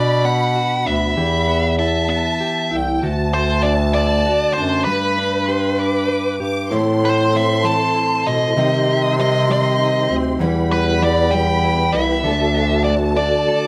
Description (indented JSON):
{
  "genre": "six-eight pop ballad",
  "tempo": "65 BPM (dotted quarters)",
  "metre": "6/8",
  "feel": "straight",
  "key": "unclear",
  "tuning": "A4 = 440 Hz",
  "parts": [
    { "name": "nasal lead guitar with a parked wah", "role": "melody", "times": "0.0-13.7 s", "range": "B4 to A5", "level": "-22 LUFS", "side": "equal", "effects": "overdrive" },
    { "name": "warm studio violin section", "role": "second line", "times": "0.0-13.7 s", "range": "G5 to D6", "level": "-28 LUFS", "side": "equal", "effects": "none" },
    { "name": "direct-recorded clean electric guitar", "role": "accompaniment", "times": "0.0-13.7 s", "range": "A2 to B4", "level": "-26 LUFS", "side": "equal", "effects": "none" },
    { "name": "mellow bass clarinet", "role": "bass", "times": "0.0-13.5 s", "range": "C2 to C3", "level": "-22 LUFS", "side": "equal", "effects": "none" },
    { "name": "mellow tonewheel organ", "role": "sustained chords", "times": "6.7-13.7 s", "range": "Eb4 to A5", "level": "-27 LUFS", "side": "equal", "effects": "chorus vibrato, fast rotary speaker" },
    { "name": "picked steel-string acoustic guitar", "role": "arpeggios", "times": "6.7-13.7 s", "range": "E2 to G4", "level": "-28 LUFS", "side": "equal", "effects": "none" }
  ],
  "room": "wet studio reverb, RT60 0.5 s",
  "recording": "band playing live in one room",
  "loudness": "-18 LUFS",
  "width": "mono",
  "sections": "0.0-13.7 A section",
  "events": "none",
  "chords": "0.0 Bm; 1.2 Em; 3.0 D; 4.9 G; 6.7 Am; 8.6 Cm; 10.4 Em; 12.2 D"
}